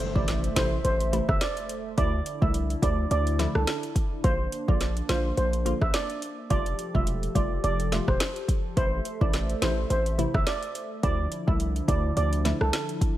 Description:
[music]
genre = dancehall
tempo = 106 BPM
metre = 4/4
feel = swing 56% on 16ths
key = A phrygian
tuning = A4 = 440 Hz
[part]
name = hollow soft pad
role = sustained chords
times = 0.0-13.2 s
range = D3 to E5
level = -35 LUFS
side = left 1 dB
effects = chorus, sidechain pumping
[part]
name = afro-pop drum kit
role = drums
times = 0.0-13.2 s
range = hi-hat, kick drum, rim click, snare drum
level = -28 LUFS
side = equal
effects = overdrive
[part]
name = impact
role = sound effects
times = 0.0-2.0 s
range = none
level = -37 LUFS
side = left 1 dB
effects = none
[part]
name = steel pan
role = melody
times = 0.2-12.7 s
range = A4 to E5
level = -31 LUFS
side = right 2 dB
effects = tape echo
[part]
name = glassy wavetable pluck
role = accompaniment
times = 0.2-12.6 s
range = C3 to F4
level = -33 LUFS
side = equal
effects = chorus
[part]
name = hard-hitting 808-style bass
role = bass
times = 0.2-12.7 s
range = E1 to D2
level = -27 LUFS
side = equal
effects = none
[sound]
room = digital ambience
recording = none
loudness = -24 LUFS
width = side -14 dB against mid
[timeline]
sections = 0.0-13.2 A section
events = impact 0.0-2.0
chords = 0.0 Am; 2.0 Dmadd9; 4.2 Bb; 6.5 Fadd9; 8.8 Am; 11.0 Dmadd9

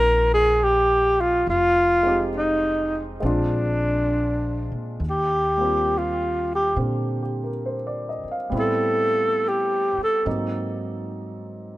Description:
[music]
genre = jazz ballad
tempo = 68 BPM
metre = 4/4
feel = swing 68% on 8ths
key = Eb major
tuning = A4 = 442 Hz
[part]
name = breathy alto saxophone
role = melody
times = 0.0-10.3 s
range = D4 to Bb4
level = -20 LUFS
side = equal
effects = none
[part]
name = warm concert grand piano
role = accompaniment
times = 0.0-11.8 s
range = D3 to G5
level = -29 LUFS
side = equal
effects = none
[part]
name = upright bass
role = bass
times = 0.0-11.8 s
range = F1 to Bb2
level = -28 LUFS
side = equal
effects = none
[sound]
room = light reverb, studio reverb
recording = rough home demo mix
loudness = -20 LUFS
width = side -17 dB against mid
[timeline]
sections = 0.0-5.0 A section; 5.0-11.8 B section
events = alto saxophone solo 5.0-11.8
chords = 0.0 Eb69; 1.5 Fm7; 3.2 Bb9; 5.0 Eb69; 8.5 Am9; 10.3 Ab9

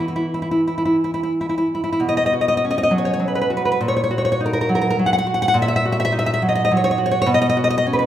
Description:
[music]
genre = romantic piece for solo classical guitar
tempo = 102 BPM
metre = 3/4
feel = uneven beats, rubato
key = B major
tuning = A4 = 439 Hz
[part]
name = nylon-string guitar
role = solo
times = 0.0-8.1 s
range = A#2 to F#5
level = -16 LUFS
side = equal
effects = none
[sound]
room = wet recital hall reverb, RT60 1.6 s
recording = recorded in a church or concert hall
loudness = -17 LUFS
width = side -11 dB against mid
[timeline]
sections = 0.0-2.0 A section; 2.0-8.1 B section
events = none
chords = 0.0 N.C.; 2.0 B5; 3.8 F#/A#; 7.3 B5

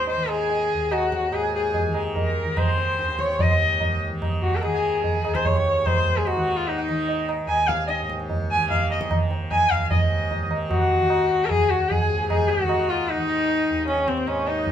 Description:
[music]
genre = indian classical, Hindustani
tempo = 148 BPM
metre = 4/4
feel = straight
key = Eb raga bageshri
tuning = A4 = 442 Hz
[part]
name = rich sarangi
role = melody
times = 0.0-14.7 s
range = C4 to Ab5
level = -22 LUFS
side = left 2 dB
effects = none
[part]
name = hand-pumped harmonium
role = second line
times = 0.0-14.7 s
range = C5 to C6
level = -32 LUFS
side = right 2 dB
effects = none
[part]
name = tanpura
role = drone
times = 0.0-14.7 s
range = Eb2 to Eb3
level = -31 LUFS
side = equal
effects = none
[part]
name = tabla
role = percussion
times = 0.1-14.7 s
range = none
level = -25 LUFS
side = right 2 dB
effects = none
[sound]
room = light reverb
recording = minimal, uncompressed stereo recording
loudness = -20 LUFS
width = side -9 dB against mid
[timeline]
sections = 0.0-9.9 A section; 9.9-14.7 B section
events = speeding up 0.0-14.7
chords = none

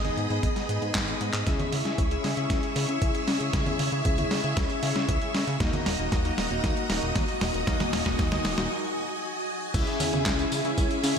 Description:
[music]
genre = italo disco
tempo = 116 BPM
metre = 4/4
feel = straight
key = C# dorian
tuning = A4 = 441 Hz
[part]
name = string machine, full ensemble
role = sustained chords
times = 0.0-11.2 s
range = C#4 to E6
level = -31 LUFS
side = equal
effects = ensemble chorus
[part]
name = chorused polysynth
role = stabs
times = 0.0-11.2 s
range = A#3 to E5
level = -31 LUFS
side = left 3 dB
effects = ping-pong delay
[part]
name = chorused synth bass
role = bass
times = 0.0-11.2 s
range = D#1 to C#3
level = -31 LUFS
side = equal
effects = none
[part]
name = dusty soul sampler-style drum kit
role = drums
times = 0.0-11.2 s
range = congas, crash cymbal, handclaps, hi-hat, snare drum, tambourine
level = -31 LUFS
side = right 1 dB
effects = overdrive, small room ambience
[part]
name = electronic kick drum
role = drums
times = 0.4-10.9 s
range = none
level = -28 LUFS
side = equal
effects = overdrive, small room ambience
[sound]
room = moderate lush hall reverb, RT60 2.0 s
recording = dreamy mix soaked in reverb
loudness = -24 LUFS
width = side -7 dB against mid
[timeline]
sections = 0.0-1.5 A section; 1.5-9.7 B section; 9.7-11.2 C section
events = drum fill 0.9-1.5, 1.5-8.7; break 8.7-9.7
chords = 0.0 G#m; 1.5 C#m; 5.6 D#m; 9.7 C#m

